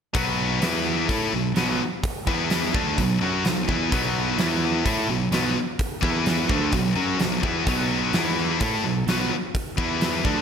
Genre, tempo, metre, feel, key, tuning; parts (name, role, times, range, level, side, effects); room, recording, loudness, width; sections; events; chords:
hard rock; 128 BPM; 4/4; straight; B minor; A4 = 440 Hz
distorted electric guitar; riff; 0.1-10.4 s; B2 to A4; -27 LUFS; right 8 dB; distortion
heavy high-gain guitar; riff; 0.1-10.4 s; B2 to A4; -25 LUFS; left 9 dB; distortion
fuzz fingered electric bass; bass; 0.1-10.4 s; B1 to A2; -29 LUFS; equal; overdrive
huge arena drum kit; drums; 0.1-10.4 s; hi-hat, kick drum, snare drum; -26 LUFS; right 1 dB; gated reverb
moderate lush hall reverb, RT60 1.6 s, small room reverb; bright 1980s-style digital production; -21 LUFS; side -7 dB against mid
0.1-10.4 A section
0.1 B5; 0.6 E5; 1.1 B5; 2.3 E5; 2.7 Bm; 4.4 E5; 4.9 B5; 6.0 E5; 6.5 Bm; 8.1 E5; 8.6 B5; 9.8 E5